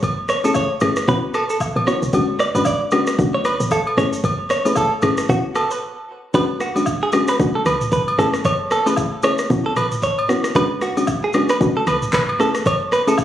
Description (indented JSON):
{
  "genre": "afrobeats",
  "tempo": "114 BPM",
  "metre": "4/4",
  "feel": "swing 58% on 16ths",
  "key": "A major",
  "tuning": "A4 = 440 Hz",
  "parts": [
    { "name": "woody log drum bass", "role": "bass", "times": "0.0-13.0 s", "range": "E1 to C#2", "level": "-24 LUFS", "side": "equal", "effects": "none" },
    { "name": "afro-pop drum kit", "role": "drums", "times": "0.0-13.2 s", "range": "handclaps, kick drum, rim click, shaker, toms", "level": "-24 LUFS", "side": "equal", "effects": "overdrive" },
    { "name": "agogo bells and woodblock", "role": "percussion", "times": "0.0-13.2 s", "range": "none", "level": "-25 LUFS", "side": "equal", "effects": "none" },
    { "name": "direct-recorded clean electric guitar", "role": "riff", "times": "0.3-13.1 s", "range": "F#4 to D5", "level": "-21 LUFS", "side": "right 2 dB", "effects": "tape echo" },
    { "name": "soft round pluck", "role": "accompaniment", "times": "0.4-13.2 s", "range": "G#3 to G#4", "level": "-20 LUFS", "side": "left 2 dB", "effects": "chorus" }
  ],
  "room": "moderate spring reverb, RT60 1.8 s, digital ambience",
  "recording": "recorded on a phone in the room, studio reverb, compression",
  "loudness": "-16 LUFS",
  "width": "side -11 dB against mid",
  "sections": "0.0-6.3 A section; 6.3-13.2 B section",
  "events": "break 5.8-6.3",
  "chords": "0.0 F#m7; 1.1 A6; 2.1 E13; 3.2 Bm9; 4.0 F#m7; 5.3 A6; 6.3 E13; 7.4 Bm9; 8.2 F#m7; 9.5 A6; 10.6 E13; 11.6 Bm9; 12.4 F#m7"
}